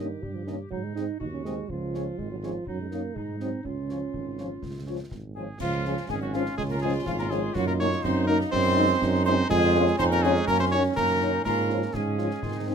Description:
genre	military-style march for wind band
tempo	123 BPM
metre	2/4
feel	straight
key	Db major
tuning	A4 = 439 Hz
part	clear cornet	melody	0.0-12.7 s	F4 to Eb5	-32 LUFS	equal	none
part	clear woodwind section	second line	0.0-12.7 s	C4 to G4	-35 LUFS	left 3 dB	none
part	dark euphonium	second line	0.0-12.7 s	Eb3 to Eb4	-31 LUFS	right 6 dB	none
part	mellow French horn section	accompaniment	0.0-12.7 s	F3 to Ab4	-29 LUFS	left 5 dB	none
part	mellow tuba	bass	0.0-12.7 s	Ab1 to Ab2	-29 LUFS	right 3 dB	none
part	concert bass drum, concert snare drum and clash cymbals	drums	0.2-12.7 s	none	-40 LUFS	left 1 dB	none
part	flute section	second line	5.4-12.7 s	F5 to Db6	-30 LUFS	left 2 dB	none
part	warm trombone section	sustained chords	5.6-12.7 s	Eb3 to Eb4	-34 LUFS	left 1 dB	none
room	light reverb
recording	none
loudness	-24 LUFS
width	side -7 dB against mid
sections	0.0-5.6 A section; 5.6-12.7 A section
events	none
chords	0.0 Eb7/G; 0.7 Ab; 1.7 Db; 2.7 Ebm/Gb; 3.2 Ab7; 3.7 Db; 7.6 Ebm/Gb; 8.5 Ab7/Gb; 9.5 Db/F; 10.5 Ebm7/Gb; 11.5 Db/Ab

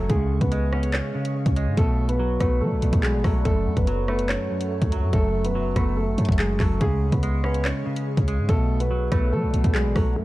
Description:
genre	hip hop, drill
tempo	143 BPM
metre	4/4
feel	half-time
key	F# minor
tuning	A4 = 439 Hz
part	dark grand piano	melody	0.0-10.2 s	G#3 to C#5	-27 LUFS	equal	low-pass filter, tape echo
part	semi-hollow electric guitar	accompaniment	0.0-10.2 s	F#2 to C#4	-27 LUFS	right 1 dB	wide subtle chorus, low-pass filter
part	ethereal airy pad	sustained chords	0.0-10.2 s	A3 to C#6	-36 LUFS	right 1 dB	ensemble chorus, built-in reverb, low-pass filter
part	hard-hitting 808-style bass	bass	0.0-10.2 s	E1 to F#3	-24 LUFS	equal	none
part	drill drum kit	drums	0.1-10.1 s	handclaps, hi-hat, kick drum, rim click	-24 LUFS	equal	vintage 12-bit sampler grit
room	little or no reverb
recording	dark, warm production, vinyl crackle, faint mains hum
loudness	-20 LUFS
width	side -17 dB against mid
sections	0.0-10.2 A section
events	none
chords	0.1 C#; 1.8 Bm7; 3.5 F#m7; 6.8 C#; 8.5 Bm7

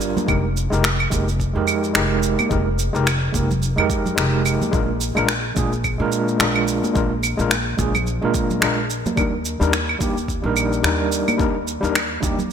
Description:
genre	sunset chillout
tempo	108 BPM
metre	4/4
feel	swing 57% on 16ths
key	F dorian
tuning	A4 = 441 Hz
part	overdriven tine electric piano	accompaniment	0.0-12.4 s	G3 to Bb4	-22 LUFS	moving between left 4 dB and right 4 dB	fast tremolo, auto-pan, ping-pong delay
part	upright bass	bass	0.0-12.5 s	F1 to Bb2	-23 LUFS	equal	none
part	electronic shaker, claves and finger snaps	drums	0.0-12.5 s	none	-23 LUFS	right 2 dB	gated reverb
part	congas	percussion	0.2-12.5 s	none	-28 LUFS	right 5 dB	none
part	electronic kick drum	drums	0.3-12.4 s	none	-25 LUFS	equal	none
room	moderate lush hall reverb, RT60 1.9 s, digital ambience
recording	bright 1980s-style digital production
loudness	-18 LUFS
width	side -8 dB against mid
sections	0.0-12.5 A section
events	none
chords	0.3 Fm11; 4.7 Bb7; 9.2 Ebmaj7

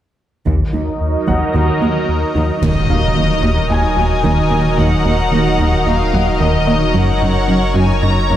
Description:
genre	cinematic, hybrid orchestral and electronic film score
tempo	111 BPM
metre	4/4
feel	straight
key	Eb minor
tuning	A4 = 440 Hz
part	lush unison pad	sustained chords	0.5-8.4 s	Gb3 to Eb5	-18 LUFS	right 1 dB	chorus, low-pass filter
part	analog pluck	arpeggios	0.5-8.4 s	Eb3 to Eb4	-22 LUFS	right 3 dB	chorus, low-pass filter, digital delay
part	round analog bass	riff	0.5-8.4 s	Eb2 to Gb3	-18 LUFS	left 1 dB	low-pass filter
part	rich symphonic cello section	bass	0.5-8.4 s	Eb2 to Gb2	-22 LUFS	right 2 dB	none
part	taiko ensemble	drums	0.5-1.5 s	none	-23 LUFS	equal	none
part	bright baby grand piano	texture	1.3-8.4 s	Eb5 to Ab5	-27 LUFS	left 3 dB	digital delay
part	rich studio violin section	melody	2.6-8.4 s	Eb5 to Bb5	-21 LUFS	left 4 dB	low-pass filter
part	pure sine sub bass	bass	2.6-8.4 s	Eb1 to Gb1	-21 LUFS	equal	none
part	impact	sound effects	2.6-4.8 s	none	-24 LUFS	equal	none
room	wet scoring stage reverb, RT60 1.4 s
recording	none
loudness	-13 LUFS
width	side -11 dB against mid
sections	0.5-2.6 A section; 2.6-8.4 B section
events	filter sweep 0.5-2.6; impact 2.6-4.8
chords	0.5 Ebm; 7.0 Gb6

